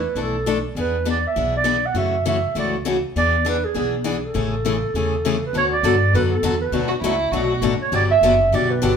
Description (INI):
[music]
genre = acoustic string swing (jazz manouche)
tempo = 201 BPM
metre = 4/4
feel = swing 58% on 8ths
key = A major, D major from 5.5 s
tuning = A4 = 441 Hz
[part]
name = breathy clarinet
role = melody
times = 0.0-9.0 s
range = G#4 to F#5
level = -21 LUFS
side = right 4 dB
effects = none
[part]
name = upright bass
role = bass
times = 0.0-9.0 s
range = F#1 to G2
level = -24 LUFS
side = equal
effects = none
[part]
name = picked steel-string acoustic guitar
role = accompaniment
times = 0.2-8.9 s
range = B2 to A4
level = -22 LUFS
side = left 4 dB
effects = none
[part]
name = warm violin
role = second line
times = 6.9-7.7 s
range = E4 to F#4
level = -24 LUFS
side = right 3 dB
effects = none
[sound]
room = wet studio reverb, RT60 0.8 s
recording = heard from further back in the room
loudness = -18 LUFS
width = side -7 dB against mid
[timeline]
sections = 0.0-5.5 A section; 5.5-9.0 B section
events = none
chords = 0.0 E7sus4; 0.8 E7; 2.0 F#m7; 3.2 E7; 4.3 Amaj7; 5.5 D69; 6.7 Bm7; 7.9 Gmaj7